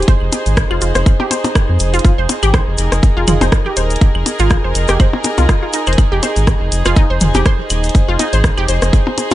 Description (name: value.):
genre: minimal techno.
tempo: 122 BPM.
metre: 4/4.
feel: swing 55% on 16ths.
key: F minor.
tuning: A4 = 440 Hz.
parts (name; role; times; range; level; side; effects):
round analog bass; bass; 0.0-8.9 s; Eb1 to F2; -16 LUFS; equal; sidechain pumping.
garage drum kit; drums; 0.0-9.3 s; hi-hat, rim click; -23 LUFS; right 1 dB; studio reverb.
dark studio string section; texture; 0.0-9.3 s; Eb4 to C5; -21 LUFS; right 1 dB; sidechain pumping.
resonant blip pluck; riff; 0.1-9.3 s; Eb4 to C5; -21 LUFS; equal; chorus, sidechain pumping, digital delay.
electronic kick drum; drums; 0.1-9.0 s; none; -12 LUFS; equal; studio reverb.
cabasa; percussion; 0.1-9.3 s; none; -26 LUFS; left 6 dB; none.
techno drum kit; percussion; 0.3-9.3 s; claves, percussion blips, rim click, toms; -20 LUFS; left 2 dB; overdrive, studio reverb, digital delay.
room: little or no reverb.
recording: nothing above 10.3 kHz.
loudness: -11 LUFS.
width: side -14 dB against mid.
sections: 0.0-9.3 A section.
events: none.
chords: 0.0 Fm.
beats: | 0.08 0.57 1.06 1.56 | 2.05 2.54 3.03 3.52 | 4.01 4.51 5.00 5.49 | 5.98 6.47 6.97 7.46 | 7.95 8.44 8.93.